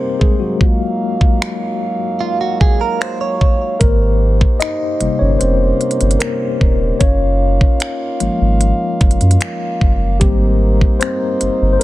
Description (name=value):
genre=contemporary R&B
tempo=75 BPM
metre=4/4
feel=straight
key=unclear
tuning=A4 = 440 Hz
part: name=mellow tine electric piano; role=accompaniment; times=0.0-11.8 s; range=C3 to Eb5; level=-19 LUFS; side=left 3 dB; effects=medium stereo tremolo
part: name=warm French horn section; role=sustained chords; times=0.0-11.8 s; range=Gb3 to F5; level=-22 LUFS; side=right 2 dB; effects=none
part: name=trap drum kit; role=drums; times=0.2-11.8 s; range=finger snaps, hi-hat, kick drum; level=-14 LUFS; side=equal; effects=vintage 12-bit sampler grit, soft clipping on snare
part: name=direct-recorded clean electric guitar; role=arpeggios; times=2.2-3.8 s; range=F4 to Db5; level=-21 LUFS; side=right 6 dB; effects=spring reverb, ping-pong delay
part: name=saturated sub bass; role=bass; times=3.8-11.8 s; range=Eb1 to Gb2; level=-15 LUFS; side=equal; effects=none
room=little or no reverb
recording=dense, heavily limited modern master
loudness=-13 LUFS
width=side -16 dB against mid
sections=0.0-11.8 A section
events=break 0.0-3.8; tine electric piano solo 0.0-11.8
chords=0.0 Abmaj9; 0.6 Gbmaj9; 3.8 Abmaj9; 7.0 Gbmaj9; 10.2 Abmaj9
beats=| 0.61 1.41 2.21 3.01 | 3.81 4.61 5.41 6.21 | 7.01 7.81 8.61 9.41 | 10.21 11.01 11.81